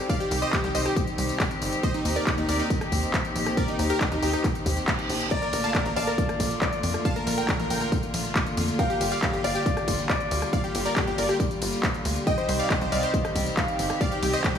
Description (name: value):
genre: uplifting trance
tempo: 138 BPM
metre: 4/4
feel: straight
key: unclear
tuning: A4 = 439 Hz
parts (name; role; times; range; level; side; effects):
- rich chamber string section; sustained chords; 0.0-14.6 s; D3 to G4; -30 LUFS; left 1 dB; sidechain pumping
- supersaw stab; melody; 0.1-14.6 s; Eb4 to Bb5; -30 LUFS; equal; sidechain pumping, tape echo
- electronic kick drum; drums; 0.1-14.5 s; none; -28 LUFS; equal; none
- techno drum kit; drums; 0.1-14.6 s; crash cymbal, handclaps, hi-hat, ride cymbal, rim click, tambourine; -30 LUFS; equal; none
- tight sequencer bass; bass; 0.3-14.6 s; G1 to F2; -30 LUFS; equal; sidechain pumping
- reverse cymbal; sound effects; 4.6-5.3 s; none; -34 LUFS; right 6 dB; none
- warm concert grand piano; second line; 5.3-14.0 s; D5 to F5; -30 LUFS; left 1 dB; tape echo
room: light reverb, digital ambience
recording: studio reverb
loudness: -23 LUFS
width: side -8 dB against mid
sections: 0.0-14.6 A section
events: reverse cymbal 4.6-5.3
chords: 0.0 Cm; 1.8 Eb6; 5.3 Bbmaj7; 8.8 Gm7; 12.3 Cm